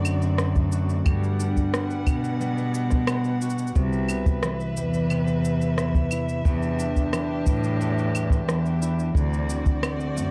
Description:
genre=folktronica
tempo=89 BPM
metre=4/4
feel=straight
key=G major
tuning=A4 = 440 Hz
part: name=warm string quartet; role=sustained chords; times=0.0-10.3 s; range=G3 to F#5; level=-35 LUFS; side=equal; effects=none
part: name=concert harp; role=arpeggios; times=0.0-10.3 s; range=E2 to F#4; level=-31 LUFS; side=equal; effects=low-pass filter, delay
part: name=rich cello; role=bass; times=0.0-10.3 s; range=C2 to B2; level=-28 LUFS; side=equal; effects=none
part: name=electronic claves, cabasa and rim click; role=drums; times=0.0-10.3 s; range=none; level=-33 LUFS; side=equal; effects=none
part: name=kick drum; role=drums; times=0.6-9.8 s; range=none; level=-24 LUFS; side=equal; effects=none
room=light reverb, small room ambience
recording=dark, warm production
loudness=-24 LUFS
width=mono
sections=0.0-10.3 A section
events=none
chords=0.0 D7; 1.1 Gmaj7; 3.8 Cmaj7; 6.5 Em7; 9.2 D7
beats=0.39 | 1.06 1.74 2.41 3.09 | 3.76 4.43 5.11 5.78 | 6.46 7.13 7.80 8.48 | 9.15 9.83

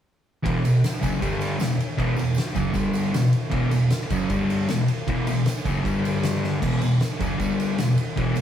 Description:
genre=garage rock duo or trio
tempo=156 BPM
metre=4/4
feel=straight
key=E minor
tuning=A4 = 440 Hz
part: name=fuzz guitar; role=riff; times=0.4-8.4 s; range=E2 to G3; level=-21 LUFS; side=equal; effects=distortion
part: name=oversized low-tuned drum kit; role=drums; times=0.5-8.4 s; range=crash cymbal, kick drum, ride cymbal, snare drum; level=-28 LUFS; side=equal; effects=none
part: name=tambourine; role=percussion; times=0.6-8.4 s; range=none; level=-44 LUFS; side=right 4 dB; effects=none
room=wet stone room reverb, RT60 1.2 s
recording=band playing live in one room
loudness=-21 LUFS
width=side -10 dB against mid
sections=0.5-8.4 A section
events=drum fill 6.4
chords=0.5 E5; 1.2 G5; 1.6 E5; 2.8 G5; 3.2 E5; 4.3 G5; 4.7 E5; 5.9 G5; 6.6 E5; 7.4 G5; 7.8 E5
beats=| 0.46 0.84 1.23 1.61 | 2.00 2.38 2.77 3.15 | 3.54 3.92 4.31 4.70 | 5.08 5.47 5.85 6.24 | 6.63 7.01 7.40 7.78 | 8.17

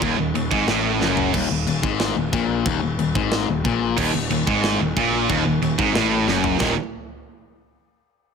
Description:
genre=heavy metal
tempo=183 BPM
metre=4/4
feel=straight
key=unclear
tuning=A4 = 439 Hz
part: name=distorted electric guitar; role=riff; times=0.0-6.7 s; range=Eb2 to Eb3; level=-22 LUFS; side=left 9 dB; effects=distortion
part: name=high-gain distorted guitar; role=riff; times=0.0-1.3, 4.0-6.7 s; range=Eb2 to Eb3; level=-22 LUFS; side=right 13 dB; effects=distortion
part: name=fuzz picked electric bass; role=bass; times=0.0-6.8 s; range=Eb1 to Bb1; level=-27 LUFS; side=right 1 dB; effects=overdrive
part: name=tight metal drum kit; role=drums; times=0.0-6.7 s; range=china cymbal, crash cymbal, kick drum, snare drum, splash cymbal, toms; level=-25 LUFS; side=right 1 dB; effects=none
room=light reverb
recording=none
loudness=-18 LUFS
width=side -6 dB against mid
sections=0.0-1.3 A section; 1.3-6.6 A section; 6.6-7.9 B section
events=drum fill 1.0-1.3, 6.3-6.6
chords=0.0 Ebm; 6.6 Eb5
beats=| 0.02 0.35 0.68 1.01 | 1.34 1.67 2.00 2.33 | 2.66 2.99 3.32 3.65 | 3.97 4.30 4.63 4.96 | 5.29 5.62 5.94 6.27 | 6.60

